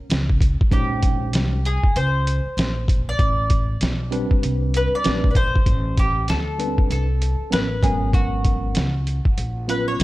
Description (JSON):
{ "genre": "hip hop, jazz-hop", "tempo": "97 BPM", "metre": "4/4", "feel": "swing 61% on 16ths", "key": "unclear", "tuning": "A4 = 436 Hz", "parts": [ { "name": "upright bass", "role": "bass", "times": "0.1-10.0 s", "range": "G#1 to D2", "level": "-23 LUFS", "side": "equal", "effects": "none" }, { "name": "trip hop sampler-style drum kit", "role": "drums", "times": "0.1-10.0 s", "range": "hi-hat, kick drum, snare drum", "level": "-20 LUFS", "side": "equal", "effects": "vintage 12-bit sampler grit" }, { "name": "mandolin", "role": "melody", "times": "0.7-10.0 s", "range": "F#4 to D5", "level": "-25 LUFS", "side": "equal", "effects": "slapback echo" }, { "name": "tine electric piano", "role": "accompaniment", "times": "0.7-10.0 s", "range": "F#3 to C5", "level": "-27 LUFS", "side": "equal", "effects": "overdrive, fast stereo tremolo" } ], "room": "little or no reverb", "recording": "none", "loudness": "-18 LUFS", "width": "side -18 dB against mid", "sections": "0.0-5.7 A section; 5.7-10.0 B section", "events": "none", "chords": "0.0 N.C.; 0.7 Bbm11; 3.2 Am11; 7.8 G#m11", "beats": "0.10 | 0.72 1.34 1.96 2.58 | 3.19 3.81 4.43 5.05 | 5.67 6.29 6.90 7.52 | 8.14 8.76 9.38 10.00" }